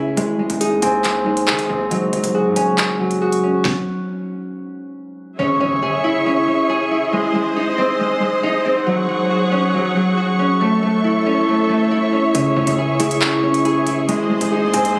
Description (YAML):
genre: hip hop, drill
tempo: 138 BPM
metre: 4/4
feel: half-time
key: C# harmonic minor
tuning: A4 = 439 Hz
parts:
  - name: mellow tine electric piano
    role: accompaniment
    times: 0.0-3.7, 12.3-15.0 s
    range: C#3 to G#5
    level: -21 LUFS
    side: equal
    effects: none
  - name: concert harp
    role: arpeggios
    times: 0.0-15.0 s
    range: F#3 to G#4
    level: -21 LUFS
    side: equal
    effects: digital delay
  - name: distorted 808-style bass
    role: bass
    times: 0.0-3.6, 12.3-15.0 s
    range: F#1 to D#3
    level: -32 LUFS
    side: equal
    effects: distortion
  - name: drill drum kit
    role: drums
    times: 0.2-3.8, 12.3-14.9 s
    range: handclaps, hi-hat, kick drum, snare drum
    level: -24 LUFS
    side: equal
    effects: none
  - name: rich chamber string section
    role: sustained chords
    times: 5.4-15.0 s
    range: G#4 to C#6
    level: -24 LUFS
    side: equal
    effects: none
  - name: impact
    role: sound effects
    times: 5.4-7.1 s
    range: none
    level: -33 LUFS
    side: equal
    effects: none
room: light reverb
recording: recorded on a phone in the room, studio ambience, compression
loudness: -18 LUFS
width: mono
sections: 0.0-5.4 A section; 5.4-15.0 B section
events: stop 3.7-5.4; impact 5.4-7.1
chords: 0.2 G#; 1.9 F#sus2; 3.7 N.C.; 5.4 C#m; 7.1 G#; 8.9 F#sus2; 10.6 A; 12.3 C#m; 14.1 G#